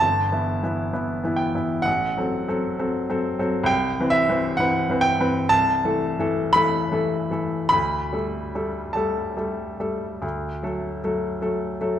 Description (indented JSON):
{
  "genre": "classical, romantic nocturne for solo piano",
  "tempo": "47-67 BPM",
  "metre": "4/4",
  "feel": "rubato",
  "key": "unclear",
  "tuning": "A4 = 440 Hz",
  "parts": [
    { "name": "clear baby grand piano", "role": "solo", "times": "0.0-12.0 s", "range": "G1 to B5", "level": "-21 LUFS", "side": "equal", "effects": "none" }
  ],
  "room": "moderate recital hall reverb, RT60 1.4 s",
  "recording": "none",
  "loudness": "-21 LUFS",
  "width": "side -10 dB against mid",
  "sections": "0.0-12.0 A section",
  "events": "none",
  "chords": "0.0 Em/G; 1.9 F#dim/A; 3.7 Cmaj7; 5.5 Am/C; 7.7 Dsus4; 10.2 D"
}